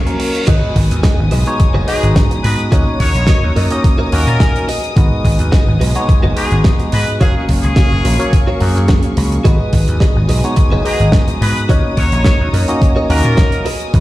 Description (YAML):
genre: nu-disco, nu disco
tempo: 107 BPM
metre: 4/4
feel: straight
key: G# dorian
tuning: A4 = 440 Hz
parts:
  - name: dark chamber string section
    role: sustained chords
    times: 0.0-14.0 s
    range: B3 to D#6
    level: -26 LUFS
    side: left 2 dB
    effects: vintage 12-bit sampler grit, sidechain pumping
  - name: reverse cymbal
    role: sound effects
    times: 0.0-0.5 s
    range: none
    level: -24 LUFS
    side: right 2 dB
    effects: none
  - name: barky tine electric piano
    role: accompaniment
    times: 0.1-14.0 s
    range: F#3 to A#5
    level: -20 LUFS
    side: equal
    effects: phaser, sidechain pumping, ping-pong delay
  - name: direct-recorded clean electric guitar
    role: riff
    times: 0.1-14.0 s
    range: F#4 to G#5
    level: -24 LUFS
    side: right 1 dB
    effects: lush chorus, ping-pong delay
  - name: damped 70s drum kit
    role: drums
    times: 0.1-14.0 s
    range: crash cymbal, hi-hat, snare drum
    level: -22 LUFS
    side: right 1 dB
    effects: none
  - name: vintage slap bass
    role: bass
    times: 0.5-14.0 s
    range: F#1 to A#2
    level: -14 LUFS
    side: equal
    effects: none
  - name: electronic kick drum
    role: drums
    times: 0.5-14.0 s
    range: none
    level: -12 LUFS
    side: equal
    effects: overdrive
  - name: muted trumpet section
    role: melody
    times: 1.9-13.7 s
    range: G#4 to C#5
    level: -23 LUFS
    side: left 2 dB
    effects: dub echo
room: studio ambience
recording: played on a big sound system in a bare room, stone room reverb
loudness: -11 LUFS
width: side -16 dB against mid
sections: 0.0-14.0 A section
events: reverse cymbal 0.0-0.5; clean electric guitar fill 4.1-5.0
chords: 0.5 G#m7; 2.7 D#m7; 4.7 G#m7; 7.2 F#maj7; 9.5 G#m7; 11.7 D#m7